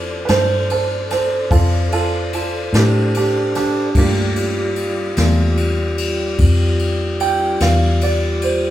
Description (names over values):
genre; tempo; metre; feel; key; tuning
slow blues; 49 BPM (dotted quarters); 12/8; straight; unclear; A4 = 438 Hz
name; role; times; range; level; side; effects
dark grand piano; accompaniment; 0.0-8.7 s; F3 to G5; -20 LUFS; right 4 dB; none
mellow tonewheel organ; sustained chords; 0.0-8.7 s; G3 to D5; -23 LUFS; left 1 dB; slow rotary speaker
vintage muted fingered electric bass; bass; 0.0-8.7 s; E2 to A2; -18 LUFS; left 1 dB; none
jazz brush drum kit; drums; 0.3-8.6 s; kick drum, ride cymbal, snare drum; -22 LUFS; left 1 dB; none
room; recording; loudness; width
moderate large studio reverb, RT60 0.9 s; band playing live in one room; -15 LUFS; side -13 dB against mid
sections
0.0-8.7 A section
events
grand piano solo 0.0-8.7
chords
0.0 Dm7; 4.0 Gm7